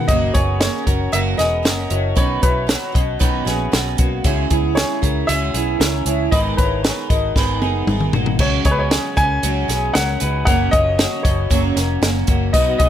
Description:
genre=jangly indie pop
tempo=116 BPM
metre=4/4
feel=straight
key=F# major from 8.4 s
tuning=A4 = 443 Hz
part: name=warm upright piano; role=melody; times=0.0-12.9 s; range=B4 to G#5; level=-22 LUFS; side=left 1 dB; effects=analog delay
part: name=picked twelve-string acoustic guitar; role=accompaniment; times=0.0-12.9 s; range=F#2 to A#4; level=-24 LUFS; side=right 8 dB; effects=none
part: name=electric guitar through a small old amp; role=arpeggios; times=0.0-12.9 s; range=A#3 to D#5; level=-24 LUFS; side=left 3 dB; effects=analog chorus, analog delay
part: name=vintage muted fingered electric bass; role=bass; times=0.1-12.9 s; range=E1 to C#2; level=-22 LUFS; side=equal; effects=none
part: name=compact cocktail drum kit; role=drums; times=0.1-12.9 s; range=crash cymbal, hi-hat, kick drum, snare drum, toms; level=-19 LUFS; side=equal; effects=none
part: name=combo organ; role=accompaniment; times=12.5-12.9 s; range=D#4 to B4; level=-28 LUFS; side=left 7 dB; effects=none
part: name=tambourine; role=percussion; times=12.5-12.7 s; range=none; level=-32 LUFS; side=left 10 dB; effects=none
room=light reverb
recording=none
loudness=-15 LUFS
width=side -10 dB against mid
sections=0.0-8.4 A section; 8.4-12.9 B section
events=drum fill 7.4-8.4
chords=0.1 F#; 2.2 Badd9; 4.2 C#m; 6.3 G#madd9; 8.4 C#sus4; 10.5 F#

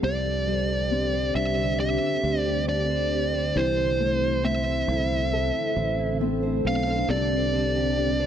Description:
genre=pop ballad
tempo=68 BPM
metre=4/4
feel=straight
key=unclear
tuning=A4 = 437 Hz
part: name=fuzz lead guitar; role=melody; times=0.0-8.3 s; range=C5 to F5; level=-26 LUFS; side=right 1 dB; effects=distortion
part: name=dark upright piano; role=accompaniment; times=0.0-8.3 s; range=C3 to A4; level=-30 LUFS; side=left 5 dB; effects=none
part: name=granular cloud pad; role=sustained chords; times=0.0-8.3 s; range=D3 to A4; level=-31 LUFS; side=equal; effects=built-in reverb
part: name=fingerpicked steel-string acoustic guitar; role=arpeggios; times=0.0-8.3 s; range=C3 to C5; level=-34 LUFS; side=right 10 dB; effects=none
part: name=fingered electric bass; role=bass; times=0.0-8.3 s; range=A1 to D2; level=-28 LUFS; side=equal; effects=none
room=light reverb, small room ambience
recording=none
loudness=-22 LUFS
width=side -9 dB against mid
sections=0.0-8.3 A section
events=none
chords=0.0 Csus2; 3.6 Am/C; 7.1 Csus2

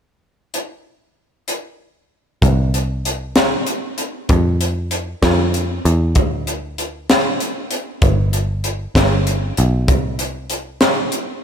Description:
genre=math rock and midwest emo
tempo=64 BPM (dotted quarters)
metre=6/8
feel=straight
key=unclear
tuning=A4 = 442 Hz
part: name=crisp fusion drum kit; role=drums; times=0.5-11.3 s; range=hi-hat, kick drum, snare drum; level=-17 LUFS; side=equal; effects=none
part: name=picked electric bass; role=bass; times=2.4-11.0 s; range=G1 to F2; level=-18 LUFS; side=equal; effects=none
room=light reverb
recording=none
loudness=-16 LUFS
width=side -8 dB against mid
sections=0.5-2.4 A section; 2.4-11.4 B section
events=none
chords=none

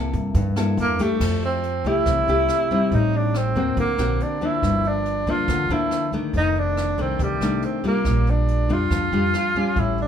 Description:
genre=bossa nova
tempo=140 BPM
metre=4/4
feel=straight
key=F major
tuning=A4 = 444 Hz
part: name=nylon-string guitar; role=accompaniment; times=0.0-10.1 s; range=F2 to A4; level=-24 LUFS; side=left 3 dB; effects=none
part: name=upright bass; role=bass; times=0.0-10.1 s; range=F1 to G2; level=-24 LUFS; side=right 1 dB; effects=none
part: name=jazz brush drum kit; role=drums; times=0.1-10.1 s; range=crash cymbal, hi-hat, kick drum, rim click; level=-31 LUFS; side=right 1 dB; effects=none
part: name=breathy tenor saxophone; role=melody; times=0.8-10.1 s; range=G3 to F4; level=-23 LUFS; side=right 2 dB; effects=none
room=moderate large studio reverb, RT60 0.9 s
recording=band playing live in one room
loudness=-19 LUFS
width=side -8 dB against mid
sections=0.0-1.2 A section; 1.2-10.1 B section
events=tenor saxophone solo 0.0-1.2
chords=0.0 C6; 1.2 Fmaj9; 2.9 Am7b5; 3.8 D7alt; 4.6 Gm7; 6.3 F13; 8.1 Bb6

